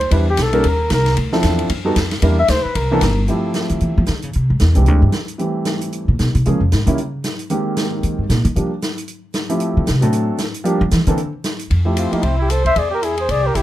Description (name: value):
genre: jazz, small-group swing and bop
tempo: 228 BPM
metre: 4/4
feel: swing 59% on 8ths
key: F major from 3.3 s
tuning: A4 = 440 Hz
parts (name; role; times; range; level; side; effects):
- mellow flugelhorn; melody; 0.0-3.2, 12.0-13.6 s; Eb4 to E5; -19 LUFS; left 2 dB; plate reverb
- upright bass; bass; 0.0-13.6 s; G1 to F3; -16 LUFS; equal; none
- open jazz drum kit; drums; 0.0-13.6 s; hi-hat, kick drum, ride cymbal, rim click, snare drum; -24 LUFS; equal; none
- warm grand piano; accompaniment; 0.1-12.2 s; Eb3 to B4; -20 LUFS; right 1 dB; none
- mellow trumpet; second line; 12.0-13.6 s; Bb3 to C5; -23 LUFS; right 4 dB; none
room: light reverb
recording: none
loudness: -15 LUFS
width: side -14 dB against mid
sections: 0.0-3.3 A section; 3.3-11.7 A section; 11.7-13.6 B section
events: flugelhorn solo 0.0-3.3; upright bass solo 3.3-11.7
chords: 0.1 Em7; 0.6 Eb5; 1.2 Dm9; 1.7 B7b13; 2.2 Em7b5; 2.8 C13; 3.3 Fmaj9; 4.3 E7alt; 5.4 Am7; 6.4 Bbm7; 7.0 N.C.; 7.5 Abmaj9; 8.6 Gm7; 9.1 C; 9.6 Fmaj9; 10.1 D7; 10.7 Gm7; 11.2 N.C.; 11.7 Fmaj9; 12.8 Bb7#11